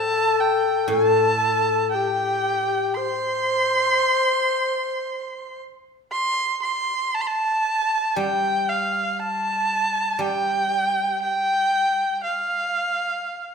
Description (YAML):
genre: chinese traditional, Chinese chamber ensemble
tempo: 59 BPM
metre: 4/4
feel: rubato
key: unclear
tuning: A4 = 440 Hz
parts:
  - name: rich erhu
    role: melody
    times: 0.0-13.5 s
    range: F5 to C6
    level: -21 LUFS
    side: right 1 dB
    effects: none
  - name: breathy bright low xiao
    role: second line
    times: 0.0-5.6 s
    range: G4 to C5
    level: -23 LUFS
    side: left 4 dB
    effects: none
  - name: guzheng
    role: accompaniment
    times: 0.0-13.2 s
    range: A2 to G3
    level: -26 LUFS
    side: equal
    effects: none
room: wet recital hall reverb, RT60 1.3 s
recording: minimal, uncompressed stereo recording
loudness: -20 LUFS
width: side -6 dB against mid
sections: 0.0-6.1 A section; 6.1-13.5 B section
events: none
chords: none